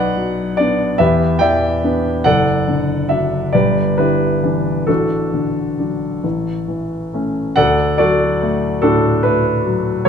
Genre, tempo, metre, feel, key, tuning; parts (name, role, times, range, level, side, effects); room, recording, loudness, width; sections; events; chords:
classical, romantic character piece for solo piano; 44-50 BPM (dotted quarters); 6/8; rubato; D major; A4 = 440 Hz
warm concert grand piano; solo; 0.0-10.1 s; F#1 to G5; -14 LUFS; equal
moderate recital hall reverb, RT60 1.6 s; close, detailed microphones; -14 LUFS; side -7 dB against mid
0.0-7.6 A section; 7.6-10.1 B section
0.0 Bm; 1.0 Em7; 2.2 D/F#; 3.5 Em7/G; 4.9 D/A; 6.2 A; 7.6 D